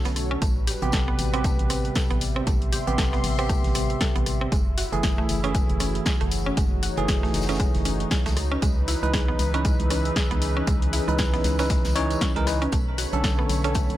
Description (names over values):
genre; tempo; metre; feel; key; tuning
deep house; 117 BPM; 4/4; swing 58% on 16ths; unclear; A4 = 440 Hz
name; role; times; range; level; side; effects
warm analog pad; sustained chords; 0.0-14.0 s; D3 to C6; -35 LUFS; left 1 dB; chorus, sidechain pumping
bell-like tine electric piano; stabs; 0.0-14.0 s; C3 to C#5; -28 LUFS; right 1 dB; medium stereo tremolo, sidechain pumping, digital delay
modern studio drum kit; drums; 0.0-13.9 s; hi-hat, snare drum, tambourine; -39 LUFS; left 2 dB; sidechain pumping on hats, high-pass filter on hats, high-pass filter on snare, sidechain pumping on perc, high-pass filter on perc, high-pass filter on room
deep dark ambient pad; texture; 0.0-14.0 s; B3 to E6; -36 LUFS; left 1 dB; chorus, built-in reverb, sidechain pumping
mallet-like synth pluck; arpeggios; 0.1-13.8 s; G#3 to A4; -32 LUFS; right 2 dB; chorus, sidechain pumping, dub echo
organ-like FM bass; bass; 0.1-14.0 s; F#1 to C#2; -28 LUFS; equal; sidechain pumping
house drum kit; drums; 0.1-14.0 s; hi-hat, rim click, snare drum; -31 LUFS; left 1 dB; none
electronic kick drum; drums; 0.4-13.9 s; none; -25 LUFS; equal; none
string machine, violins; texture; 12.7-14.0 s; B4 to B5; -39 LUFS; left 2 dB; ensemble chorus, sidechain pumping
room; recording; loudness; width
small room reverb; none; -21 LUFS; side -14 dB against mid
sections
0.0-14.0 A section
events
none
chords
0.4 Am9; 4.5 F#m9; 8.4 C#m9; 12.7 Bm9